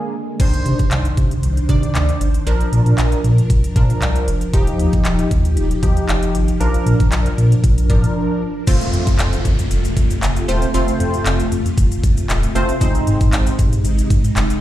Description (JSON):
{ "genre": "dance-pop", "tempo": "116 BPM", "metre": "4/4", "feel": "straight", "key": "unclear", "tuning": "A4 = 440 Hz", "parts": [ { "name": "funky polysynth comp", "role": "accompaniment", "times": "0.0-13.5 s", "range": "D3 to D5", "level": "-22 LUFS", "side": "equal", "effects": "chorus, sidechain pumping" }, { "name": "string machine, violas", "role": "sustained chords", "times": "0.0-14.6 s", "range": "C3 to C5", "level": "-24 LUFS", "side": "equal", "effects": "ensemble chorus, sidechain pumping" }, { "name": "saturated sub bass", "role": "bass", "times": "0.4-14.5 s", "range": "Eb1 to C3", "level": "-17 LUFS", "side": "equal", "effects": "sidechain pumping" }, { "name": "pop drum kit", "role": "drums", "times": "0.4-14.6 s", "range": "crash cymbal, handclaps, hi-hat, kick drum", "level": "-18 LUFS", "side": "equal", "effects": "none" }, { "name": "tube shaker", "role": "percussion", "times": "8.7-14.6 s", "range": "none", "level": "-36 LUFS", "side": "left 11 dB", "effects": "none" }, { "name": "downlifter", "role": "sound effects", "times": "8.7-12.8 s", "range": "none", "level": "-29 LUFS", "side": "left 2 dB", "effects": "none" } ], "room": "little or no reverb", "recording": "played on a big sound system in a bare room, large studio reverb", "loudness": "-14 LUFS", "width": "side -13 dB against mid", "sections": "0.4-8.7 A section; 8.7-14.6 B section", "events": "break 0.0-0.4, 8.2-8.7", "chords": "0.4 Cmadd9; 2.5 Bb; 4.5 Ebadd9; 6.6 Bb; 8.7 F; 12.8 Ab", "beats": "| 0.40 0.92 1.43 1.95 | 2.47 2.98 3.50 4.02 | 4.54 5.05 5.57 6.09 | 6.61 7.12 7.64 8.16 | 8.67 9.19 9.71 10.23 | 10.74 11.26 11.78 12.29 | 12.81 13.33 13.85 14.36" }